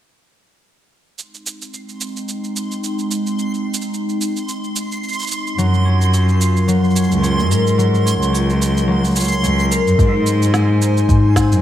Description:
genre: folktronica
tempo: 109 BPM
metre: 4/4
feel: swing 56% on 16ths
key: Ab mixolydian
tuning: A4 = 440 Hz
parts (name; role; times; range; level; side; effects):
- warbly tape-like pad; sustained chords; 1.7-11.6 s; Gb3 to Ab5; -24 LUFS; right 1 dB; chorus, built-in reverb
- electronic cabasa and snare drum; drums; 1.2-11.6 s; none; -25 LUFS; right 4 dB; none
- backwards swelling texture; texture; 2.6-11.6 s; Ab5 to C6; -26 LUFS; right 2 dB; built-in reverb
- concert harp; arpeggios; 5.6-11.6 s; Ab2 to Bb4; -18 LUFS; left 2 dB; low-pass filter
- warm cello; bass; 5.6-11.6 s; Db2 to Ab2; -16 LUFS; equal; none
- electronic kick drum; drums; 10.0-11.5 s; none; -16 LUFS; equal; overdrive
room: light reverb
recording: none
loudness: -14 LUFS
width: side -11 dB against mid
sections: 1.2-10.0 A section; 10.0-11.6 B section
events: none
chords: 1.2 Ab; 5.6 Gbmaj7; 10.0 Ab

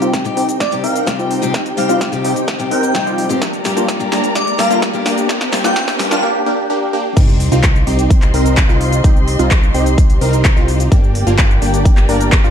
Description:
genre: EDM, festival progressive house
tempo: 128 BPM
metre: 4/4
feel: straight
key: unclear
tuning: A4 = 439 Hz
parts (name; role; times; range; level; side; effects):
- picked steel-string acoustic guitar; accompaniment; 0.0-6.2 s; G2 to G4; -21 LUFS; left 4 dB; sidechain pumping, tape echo
- dark chamber string section; sustained chords; 0.0-12.5 s; Bb3 to C6; -25 LUFS; equal; sidechain pumping
- supersaw stab; riff; 0.0-12.5 s; Bb3 to Bb4; -18 LUFS; equal; sidechain pumping, low-pass filter, tape echo
- fat analog bass; bass; 0.0-12.5 s; G1 to C2; -19 LUFS; equal; sidechain pumping, high-pass filter
- big-room dance drum kit; drums; 0.0-12.5 s; cabasa, crash cymbal, handclaps, hi-hat, snare drum; -21 LUFS; left 1 dB; high-pass filter on hats, high-pass filter on snare, high-pass filter on perc, high-pass filter on cymbals, high-pass filter on room
- riser and sub drop; sound effects; 0.0-9.0 s; none; -26 LUFS; right 1 dB; none
- electronic kick drum; drums; 0.1-12.4 s; none; -12 LUFS; equal; high-pass filter on kick
- airy dreamy lead; melody; 0.6-6.2 s; D5 to G5; -21 LUFS; equal; chorus, tape echo
room: light reverb, digital ambience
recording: dark, warm production, high-pass filter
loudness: -12 LUFS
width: side -8 dB against mid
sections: 0.0-7.2 A section; 7.2-12.5 B section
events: build-up 0.0-7.2; drum fill 0.0-6.2; filter sweep on supersaw synth 0.0-7.2; drop 7.2-12.5; impact 7.2-9.0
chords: 0.0 Cm; 3.4 Gm; 7.2 Cm; 10.9 Gm

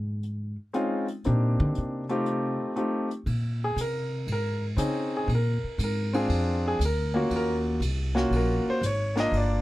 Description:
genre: jazz piano trio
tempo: 119 BPM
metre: 4/4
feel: swing 69% on 8ths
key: Bb minor from 3.3 s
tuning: A4 = 441 Hz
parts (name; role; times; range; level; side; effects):
- upright bass; bass; 0.0-9.6 s; G1 to D3; -27 LUFS; equal; none
- vintage brush drum kit; drums; 0.2-9.5 s; hi-hat, ride cymbal, snare drum; -40 LUFS; right 3 dB; none
- warm baby grand piano; melody; 0.7-9.6 s; Ab3 to Eb5; -27 LUFS; equal; none
room: little or no reverb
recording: dry, close 1970s-style studio recording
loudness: -25 LUFS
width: side -17 dB against mid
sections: 0.0-3.3 A section; 3.3-9.6 A section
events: upright bass solo 0.0-3.3; grand piano solo 3.3-9.6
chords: 0.0 Dbmaj7; 1.2 Cm7; 2.2 F7; 3.3 Bbm11; 5.3 Bb7; 7.3 Ebm9

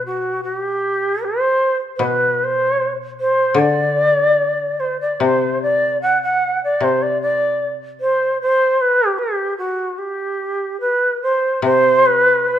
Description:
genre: japanese traditional, Japanese chamber music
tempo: 71-78 BPM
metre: 2/4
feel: rubato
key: unclear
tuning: A4 = 440 Hz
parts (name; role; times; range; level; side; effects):
- shakuhachi; melody; 0.0-12.6 s; F#4 to F#5; -16 LUFS; right 1 dB; none
- koto; accompaniment; 0.0-9.2, 11.6-12.6 s; B2 to D3; -22 LUFS; left 5 dB; none
room: light reverb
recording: minimal, uncompressed stereo recording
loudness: -15 LUFS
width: side -10 dB against mid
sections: 0.0-11.6 A section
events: none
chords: none

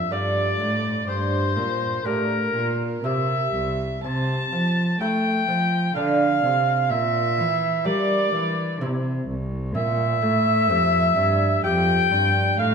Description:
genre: classical, baroque-style sonata movement with continuo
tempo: 63 BPM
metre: 3/4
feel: straight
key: unclear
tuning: A4 = 440 Hz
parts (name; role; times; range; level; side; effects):
- warm oboe; melody; 0.0-12.7 s; Bb4 to A5; -24 LUFS; left 7 dB; none
- dark violin; second line; 0.0-12.7 s; Bb4 to A5; -26 LUFS; right 9 dB; none
- lute; accompaniment; 0.0-12.7 s; F2 to A4; -29 LUFS; right 1 dB; none
- dark cello; bass; 0.0-12.7 s; C2 to A3; -24 LUFS; right 1 dB; none
room: wet recital hall reverb, RT60 1.7 s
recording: dark, warm production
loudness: -20 LUFS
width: side -6 dB against mid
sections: 0.0-12.7 A section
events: none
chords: 0.0 Dm; 1.1 Gm; 3.0 C7; 4.0 Am/C; 6.0 Dm; 6.9 Gm/Bb; 8.8 C; 9.7 C7

